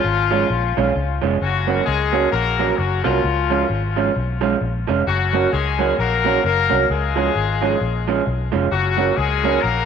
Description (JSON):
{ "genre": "ska", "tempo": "131 BPM", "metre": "4/4", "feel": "swing 60% on 8ths", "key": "F# major", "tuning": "A4 = 441 Hz", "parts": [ { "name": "clear horn section", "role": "melody", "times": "0.0-9.9 s", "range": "E#3 to A#4", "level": "-21 LUFS", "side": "left 9 dB", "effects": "tape echo" }, { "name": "vintage muted fingered electric bass", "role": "bass", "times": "0.0-9.9 s", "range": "E#1 to C#2", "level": "-22 LUFS", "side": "left 1 dB", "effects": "none" }, { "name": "electric guitar through a small old amp", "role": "accompaniment", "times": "0.3-9.6 s", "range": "E#3 to F#4", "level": "-21 LUFS", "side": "right 7 dB", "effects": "tape echo" } ], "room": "moderate echo chamber reverb, RT60 1.7 s, studio reverb", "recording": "1960s-style stereo with parts hard left and right, faint mains hum", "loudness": "-16 LUFS", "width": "side -7 dB against mid", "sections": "0.0-1.4 A section; 1.4-9.9 A section", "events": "none", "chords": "0.0 C#; 1.4 F#; 3.2 C#; 5.1 F#; 6.9 C#; 8.7 F#" }